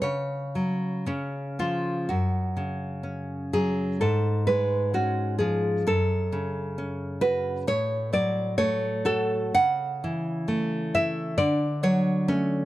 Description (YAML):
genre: romantic piece for solo classical guitar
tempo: 56-67 BPM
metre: 2/4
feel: rubato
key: F# minor, A major from 9.5 s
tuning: A4 = 440 Hz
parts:
  - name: nylon-string guitar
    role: solo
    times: 0.0-12.7 s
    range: F#2 to F#5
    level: -24 LUFS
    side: equal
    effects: none
room: small room ambience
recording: dry, close 1970s-style studio recording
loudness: -24 LUFS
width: side -15 dB against mid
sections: 0.0-2.1 A section; 2.1-12.7 B section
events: none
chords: 0.0 F#5/C#; 1.1 C#; 2.1 F#5; 4.0 C#/G#; 5.9 F#m; 7.7 F#m/A; 9.5 A/C#; 11.4 D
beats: | 0.02 1.08 | 2.12 3.08 | 4.02 4.96 | 5.87 6.76 | 7.67 8.57 | 9.53 10.46 | 11.36 12.28